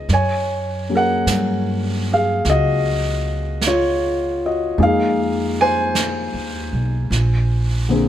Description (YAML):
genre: jazz ballad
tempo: 51 BPM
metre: 4/4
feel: swing 69% on 8ths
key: unclear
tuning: A4 = 440 Hz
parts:
  - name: dark baby grand piano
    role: accompaniment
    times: 0.0-8.1 s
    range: D3 to Ab5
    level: -18 LUFS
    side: left 1 dB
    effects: none
  - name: upright bass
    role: bass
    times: 0.0-8.1 s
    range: Bb1 to G2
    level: -21 LUFS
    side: right 1 dB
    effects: none
  - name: jazz brush drum kit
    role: drums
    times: 0.1-8.1 s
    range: brushed snare drum, hi-hat, snare drum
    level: -28 LUFS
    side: right 4 dB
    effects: none
room: light reverb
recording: none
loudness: -17 LUFS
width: side -11 dB against mid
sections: 0.0-8.1 A section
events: none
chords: 0.1 Gbmaj9; 4.8 Fm7; 7.1 Bb9